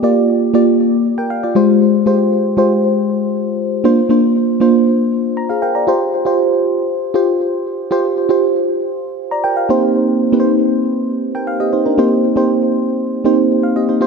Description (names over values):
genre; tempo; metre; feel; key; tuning
pop; 118 BPM; 4/4; straight; unclear; A4 = 442 Hz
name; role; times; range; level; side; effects
mellow FM electric piano; solo; 0.0-14.1 s; Ab3 to Bb5; -12 LUFS; equal; chorus, phaser, ping-pong delay
room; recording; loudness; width
moderate plate reverb, RT60 2.6 s; dark, warm production; -12 LUFS; side -5 dB against mid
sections
0.0-5.9 A section; 5.9-14.1 B section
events
FM electric piano fill 5.1-5.9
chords
0.0 Gm7; 1.6 Fmadd9/Ab; 3.8 Bbadd9; 5.9 Fsus2; 9.7 Eb6; 12.0 Cm7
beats
0.29 0.80 1.30 | 1.81 2.32 2.83 3.34 | 3.85 4.35 4.86 5.37 | 5.88 6.39 6.90 7.41 | 7.91 8.42 8.93 9.44 | 9.95 10.46 10.96 11.47 | 11.98 12.49 13.00 13.51 | 14.02